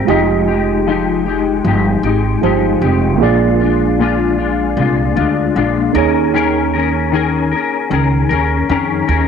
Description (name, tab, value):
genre	indie pop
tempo	77 BPM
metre	4/4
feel	straight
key	F minor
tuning	A4 = 441 Hz
part	reed electric piano	accompaniment	0.0-9.3 s	Ab3 to Eb5	-18 LUFS	right 14 dB	cassette tape
part	semi-hollow electric guitar	accompaniment	0.0-9.3 s	Bb2 to Bb4	-15 LUFS	left 8 dB	ensemble chorus, warbly pitch drift
part	upright bass	bass	0.1-9.3 s	F1 to F2	-18 LUFS	right 2 dB	none
room	moderate spring reverb, RT60 2.0 s, small room ambience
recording	1960s-style stereo with parts hard left and right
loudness	-12 LUFS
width	side -7 dB against mid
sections	0.0-9.3 A section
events	none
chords	0.1 Fm9; 3.2 Bb7; 6.0 Eb7sus4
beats	| 0.08 0.87 1.65 2.43 | 3.22 4.00 4.78 5.57 | 6.35 7.13 7.92 8.70